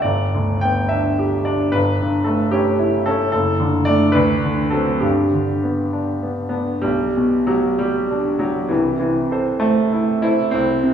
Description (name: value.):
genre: classical, romantic character piece for solo piano.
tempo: 63-75 BPM (dotted quarters).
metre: 6/8.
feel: rubato.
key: G major.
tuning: A4 = 440 Hz.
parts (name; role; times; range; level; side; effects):
bright concert grand piano; solo; 0.0-10.9 s; F#1 to G5; -16 LUFS; equal; none.
room: wet recital hall reverb, RT60 1.4 s.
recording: recorded in a church or concert hall, small room ambience.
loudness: -16 LUFS.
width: side -8 dB against mid.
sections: 0.0-6.9 A section; 6.9-10.9 B section.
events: none.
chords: 0.0 G; 1.7 A7/G; 3.3 D/F#; 4.2 D6; 5.0 G; 6.9 G/B; 8.7 Am/C.